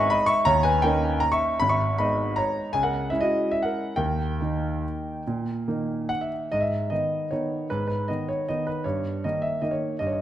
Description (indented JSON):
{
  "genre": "classical, piano waltz",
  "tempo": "133-170 BPM",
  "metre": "3/4",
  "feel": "rubato",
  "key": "G# minor",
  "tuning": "A4 = 437 Hz",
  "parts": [
    { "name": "warm concert grand piano", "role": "solo", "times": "0.0-10.2 s", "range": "G#1 to C#6", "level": "-23 LUFS", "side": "equal", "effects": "none" }
  ],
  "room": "wet recital hall reverb, RT60 1.7 s",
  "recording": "none",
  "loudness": "-23 LUFS",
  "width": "side -11 dB against mid",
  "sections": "0.0-6.5 A section; 6.5-10.2 B section",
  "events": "none",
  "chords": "0.5 D#7; 1.6 G#m; 2.7 C#m; 3.9 D#; 6.5 G#m; 8.9 D#7/G"
}